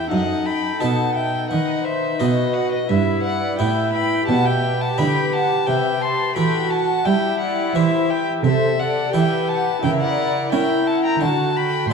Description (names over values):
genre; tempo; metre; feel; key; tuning
classical, baroque-style concerto movement with solo episodes; 86 BPM; 4/4; straight; unclear; A4 = 440 Hz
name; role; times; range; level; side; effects
rich violin; melody; 0.0-11.9 s; D#5 to C6; -24 LUFS; left 3 dB; none
warm chamber violin section; melody; 0.0-11.9 s; G4 to B4; -29 LUFS; left 6 dB; none
warm studio violin section; second line; 0.0-11.9 s; B4 to A5; -26 LUFS; equal; none
dark chamber viola section; accompaniment; 0.0-11.9 s; D#4 to A4; -24 LUFS; equal; none
harpsichord; accompaniment; 0.0-11.9 s; F#2 to A#4; -26 LUFS; equal; none
rich chamber cello section; bass; 0.0-11.9 s; F#2 to C#4; -23 LUFS; right 4 dB; none
room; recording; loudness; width
wet scoring stage reverb, RT60 1.6 s; dark, warm production; -17 LUFS; side -5 dB against mid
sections
0.0-11.9 A section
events
none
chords
0.1 B7/F#; 2.9 Em/G; 5.7 C; 8.4 Am7/C; 9.8 F#7b9b13/C#; 11.2 D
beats
| 0.11 0.81 1.50 2.20 | 2.89 3.59 4.28 4.97 | 5.67 6.36 7.05 7.75 | 8.44 9.13 9.82 10.52 | 11.21 11.90